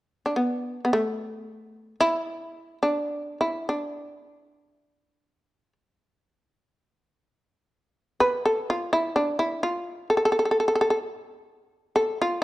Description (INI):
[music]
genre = japanese traditional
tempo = free time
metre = none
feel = none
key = D kumoi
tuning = A4 = 440 Hz
[part]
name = shamisen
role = solo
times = 0.3-12.4 s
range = A3 to B4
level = -23 LUFS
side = equal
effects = none
[sound]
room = moderate recital hall reverb, RT60 1.5 s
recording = dark, warm production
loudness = -23 LUFS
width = side -17 dB against mid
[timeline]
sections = 0.0-8.2 A section; 8.2-12.4 B section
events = none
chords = none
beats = free time